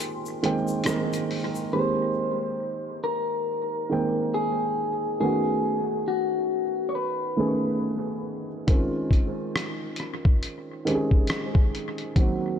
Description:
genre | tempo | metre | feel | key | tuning
lo-fi hip hop | 69 BPM | 4/4 | swing 61% on 16ths | unclear | A4 = 444 Hz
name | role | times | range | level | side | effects
electric guitar through a small old amp | melody | 0.0-8.2 s | F#4 to C#5 | -27 LUFS | left 2 dB | analog delay
dark upright piano | accompaniment | 0.0-12.6 s | Eb3 to G5 | -27 LUFS | right 2 dB | cassette tape, analog delay
warbly tape-like pad | sustained chords | 0.0-1.7 s | Bb4 to C6 | -42 LUFS | right 1 dB | chorus, built-in reverb
tube shaker | percussion | 0.0-1.7 s | none | -43 LUFS | left 6 dB | none
lo-fi sampler-style drum kit | drums | 0.4-1.5, 8.7-12.4 s | hi-hat, kick drum, rim click | -23 LUFS | equal | none
room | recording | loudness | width
light reverb | echo-heavy mix, cassette tape | -23 LUFS | side -9 dB against mid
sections
0.0-1.7 A section; 1.7-12.6 B section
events
break 0.0-1.7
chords
0.0 Abmaj9; 5.2 B9; 8.7 Dbmaj9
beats
0.85 | 1.72 2.59 3.46 4.33 | 5.20 6.07 6.94 7.81 | 8.68 9.55 10.42 11.29 | 12.16

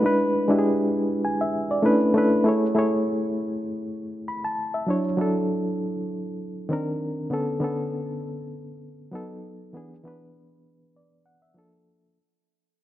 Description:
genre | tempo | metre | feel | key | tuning
soul | 99 BPM | 4/4 | swing 54% on 16ths | unclear | A4 = 437 Hz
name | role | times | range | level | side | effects
reed electric piano | solo | 0.0-12.2 s | D3 to B5 | -23 LUFS | equal | fast tremolo
room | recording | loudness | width
moderate plate reverb, RT60 2.6 s | dark, warm production | -22 LUFS | side -13 dB against mid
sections
0.0-2.5 A section; 2.5-12.2 B section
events
fade-out 2.5-12.2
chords
0.0 E7; 1.9 Bm11; 2.5 Amaj7; 4.9 Dmaj9; 6.7 Cm9; 7.3 Bm9; 9.1 B7; 9.7 E7(no3); 11.6 A#maj7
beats
| 0.03 0.64 1.25 1.85 | 2.46 3.07 3.67 4.28 | 4.89 5.49 6.10 6.71 | 7.31 7.92 8.53 9.13 | 9.74 10.35 10.95 11.56

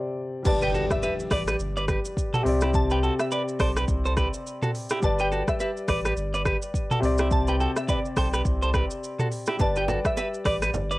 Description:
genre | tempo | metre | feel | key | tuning
afrobeats | 105 BPM | 4/4 | swing 58% on 16ths | G major | A4 = 441 Hz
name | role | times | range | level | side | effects
glassy wavetable pluck | melody | 0.0-11.0 s | D5 to A5 | -31 LUFS | equal | chorus, cassette tape
warm grand piano | accompaniment | 0.0-11.0 s | C3 to D5 | -29 LUFS | left 2 dB | cassette tape
warm sub bass | bass | 0.5-11.0 s | G1 to C2 | -28 LUFS | equal | none
afro-pop drum kit | drums | 0.5-11.0 s | crash cymbal, hi-hat, kick drum, rim click, shaker, toms | -27 LUFS | equal | cassette tape
impact | sound effects | 0.5-2.7 s | none | -36 LUFS | equal | none
clean electric guitar | riff | 0.6-11.0 s | E4 to D5 | -29 LUFS | right 2 dB | vibrato effect, cassette tape
congas and bongos | percussion | 9.6-10.9 s | none | -33 LUFS | right 3 dB | none
room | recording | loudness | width
little or no reverb | home recording on cassette | -23 LUFS | side -19 dB against mid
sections
0.5-11.0 A section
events
break 0.0-0.5; impact 0.5-2.7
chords
0.5 G; 2.5 Csus2; 5.0 G; 7.0 Csus2; 9.6 G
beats
| 0.45 1.02 1.60 2.17 | 2.74 3.31 3.88 4.45 | 5.03 5.60 6.17 6.74 | 7.31 7.88 8.45 9.03 | 9.60 10.17 10.74

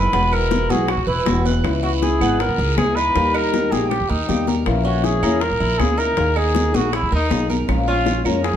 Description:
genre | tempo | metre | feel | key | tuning
latin, Cuban son and guajira | 159 BPM | 4/4 | straight | unclear | A4 = 440 Hz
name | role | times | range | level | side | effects
warm trumpet | melody | 0.0-8.6 s | D#4 to B4 | -21 LUFS | equal | none
fingerpicked old ladder-braced acoustic guitar | accompaniment | 0.0-8.5 s | B2 to A#4 | -24 LUFS | left 5 dB | none
Cuban tres | arpeggios | 0.0-8.6 s | A#3 to B4 | -26 LUFS | right 5 dB | none
upright bass | bass | 0.0-8.6 s | E1 to E#2 | -22 LUFS | right 1 dB | none
bongos | percussion | 0.1-8.6 s | none | -28 LUFS | left 8 dB | none
congas | percussion | 0.1-8.6 s | none | -26 LUFS | left 3 dB | none
guiro | percussion | 0.1-8.6 s | none | -34 LUFS | right 7 dB | none
claves | percussion | 0.3-8.4 s | none | -34 LUFS | right 8 dB | none
room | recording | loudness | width
moderate large studio reverb, RT60 1.2 s | dark, warm production | -16 LUFS | side -10 dB against mid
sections
0.0-8.6 A section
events
drum fill 3.9-4.7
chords
0.1 Eadd9; 1.6 C#m7; 3.2 D#; 4.7 A#dim; 6.2 D#sus4; 7.7 A#m7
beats
| 0.14 0.51 0.89 1.27 | 1.64 2.02 2.40 2.78 | 3.15 3.53 3.91 4.29 | 4.67 5.04 5.42 5.80 | 6.18 6.55 6.93 7.31 | 7.69 8.06 8.44

